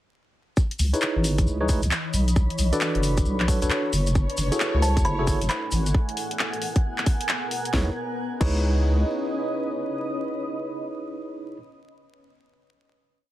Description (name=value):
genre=UK garage, two-step garage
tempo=134 BPM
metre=4/4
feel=swing 63% on 16ths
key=C# minor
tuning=A4 = 440 Hz
part: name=electronic kick drum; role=drums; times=0.6-8.6 s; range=none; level=-22 LUFS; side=equal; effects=none
part: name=cabasa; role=percussion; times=0.6-5.9 s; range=none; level=-34 LUFS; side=left 2 dB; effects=none
part: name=granular cloud pad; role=texture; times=1.5-11.0 s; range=E3 to B5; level=-31 LUFS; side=left 1 dB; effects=built-in reverb, sidechain pumping
part: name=garage drum kit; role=drums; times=0.7-8.6 s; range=crash cymbal, handclaps, hi-hat, snare drum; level=-29 LUFS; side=left 1 dB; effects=none
part: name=deep soft wobble bass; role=bass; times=0.8-9.0 s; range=F#1 to C#2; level=-23 LUFS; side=equal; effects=chorus
part: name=bright tine electric piano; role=stabs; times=0.9-11.6 s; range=D4 to D5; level=-28 LUFS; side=right 1 dB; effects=medium stereo tremolo, digital delay
part: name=warm symphonic violin section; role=sustained chords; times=4.2-6.0 s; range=C#5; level=-39 LUFS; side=left 3 dB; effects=vintage 12-bit sampler grit, sidechain pumping
part: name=kalimba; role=melody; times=4.8-5.8 s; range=A5 to B5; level=-29 LUFS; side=right 1 dB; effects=digital delay
room=light reverb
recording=dense, heavily limited modern master, vinyl crackle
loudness=-22 LUFS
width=side -14 dB against mid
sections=0.6-7.7 groove; 7.7-11.3 final chord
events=none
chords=0.6 C#m9; 2.4 Bm9; 3.9 F#m9; 5.7 G#m9; 7.7 C#m9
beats=| 0.57 1.02 1.47 1.91 | 2.36 2.81 3.26 3.71 | 4.15 4.60 5.05 5.50 | 5.94 6.39 6.84 7.29 | 7.74 8.18 8.63 9.08 | 9.53 9.97 10.42 10.87